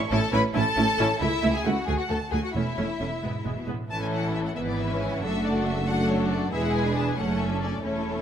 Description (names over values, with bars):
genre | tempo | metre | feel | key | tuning
quick classical-period movement for string orchestra | 91 BPM (dotted quarters) | 6/8 | straight | A major | A4 = 440 Hz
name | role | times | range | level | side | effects
clear symphonic violin section | melody | 0.1-8.2 s | C#5 to B5 | -32 LUFS | left 1 dB | none
warm symphonic violin section | second line | 0.1-8.2 s | C#4 to B4 | -30 LUFS | left 4 dB | none
clear studio viola section | accompaniment | 0.1-8.2 s | E3 to F#4 | -28 LUFS | right 1 dB | none
rich symphonic cello section | bass | 0.1-8.2 s | C#2 to B2 | -31 LUFS | right 2 dB | none
warm symphonic double bass section | bass | 0.1-8.2 s | E1 to D2 | -31 LUFS | right 3 dB | none
room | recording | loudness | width
light reverb | close, detailed microphones | -23 LUFS | side -9 dB against mid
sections
0.0-3.9 A section; 3.9-8.2 B section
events
none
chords
0.0 A; 1.2 A/C#; 1.9 D; 2.5 A/E; 3.2 E; 3.9 A; 4.6 E/G#; 5.2 D/F#; 6.5 E; 7.2 F#m